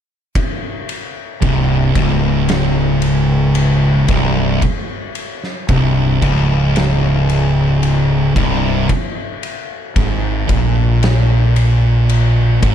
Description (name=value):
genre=stoner and doom metal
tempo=56 BPM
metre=4/4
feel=straight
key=unclear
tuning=A4 = 440 Hz
part: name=oversized low-tuned drum kit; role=drums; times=0.4-12.7 s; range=kick drum, ride cymbal, snare drum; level=-20 LUFS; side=equal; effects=none
part: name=fuzz guitar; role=riff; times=1.4-12.7 s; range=C2 to Bb2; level=-16 LUFS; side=left 6 dB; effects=distortion
part: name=thick fuzz guitar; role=riff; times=1.4-12.7 s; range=C2 to Bb2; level=-16 LUFS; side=right 7 dB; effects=distortion
part: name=fuzz fingered electric bass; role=bass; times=1.4-12.7 s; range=C1 to Bb1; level=-20 LUFS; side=equal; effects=overdrive
room=little or no reverb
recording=dark, warm production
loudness=-12 LUFS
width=side -9 dB against mid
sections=0.4-12.7 A section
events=none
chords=0.4 N.C.; 8.9 Absus2